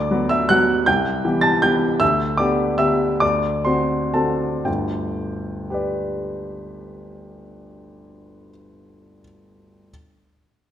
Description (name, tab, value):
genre	classical, piano waltz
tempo	113-166 BPM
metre	3/4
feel	rubato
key	G major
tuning	A4 = 444 Hz
part	warm baby grand piano	solo	0.0-9.9 s	G1 to A6	-18 LUFS	equal	none
room	moderate recital hall reverb, RT60 1.6 s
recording	none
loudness	-18 LUFS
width	side -10 dB against mid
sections	0.0-4.7 A section; 4.7-7.7 B section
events	slowing down 1.4-4.7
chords	0.0 Bm/D; 0.9 Cmaj7; 2.0 G/D; 3.2 D7; 4.7 G